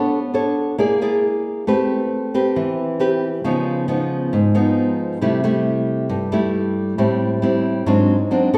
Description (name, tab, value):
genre	bossa nova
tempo	136 BPM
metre	4/4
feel	straight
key	unclear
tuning	A4 = 438 Hz
part	nylon-string guitar	solo	0.0-8.6 s	G2 to D5	-19 LUFS	equal	none
room	wet recital hall reverb, RT60 1.5 s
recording	recorded in a church or concert hall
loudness	-19 LUFS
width	mono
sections	0.0-8.6 A section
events	none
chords	0.0 Bm9; 0.8 A#7#11; 1.7 Am9; 3.4 C#9; 5.2 C6; 7.0 Am7; 7.9 G#7#11